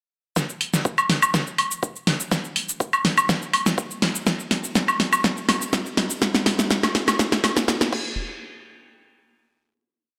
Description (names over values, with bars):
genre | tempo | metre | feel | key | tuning
house | 123 BPM | 4/4 | straight | none | none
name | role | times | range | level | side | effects
deep house drum kit | drums | 0.4-8.0 s | cabasa, crash cymbal, hi-hat, snare drum, woodblock | -22 LUFS | equal | sidechain pumping on perc, sidechain pumping on hats, sidechain pumping on cymbals
electronic kick drum | drums | 0.4-8.0 s | none | -30 LUFS | equal | high-pass filter on kick, high-pass filter on room
room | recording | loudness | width
wet lush hall reverb, RT60 1.8 s | none | -22 LUFS | mono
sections
0.4-8.2 build; 8.2-10.2 final hit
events
build-up 0.4-8.2; drum fill 0.4-8.2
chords
none